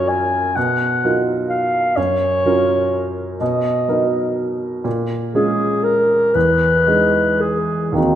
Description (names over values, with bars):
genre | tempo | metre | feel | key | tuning
classical, impressionist duo for clarinet and grand piano | 35-43 BPM (dotted quarters) | 6/8 | rubato | unclear | A4 = 439 Hz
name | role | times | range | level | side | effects
dark clarinet | melody | 0.0-8.2 s | Eb4 to Ab5 | -17 LUFS | left 1 dB | none
clear concert grand piano | accompaniment | 0.0-8.2 s | Eb2 to Bb4 | -19 LUFS | right 2 dB | none
room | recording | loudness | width
wet recital hall reverb, RT60 1.6 s | none | -15 LUFS | side -10 dB against mid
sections
0.0-8.2 A section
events
none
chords
0.0 Gbmaj7; 0.6 Bmaj7#11; 2.0 Gbmaj7; 3.4 Bmaj7; 4.9 Bbm7; 6.3 Emaj7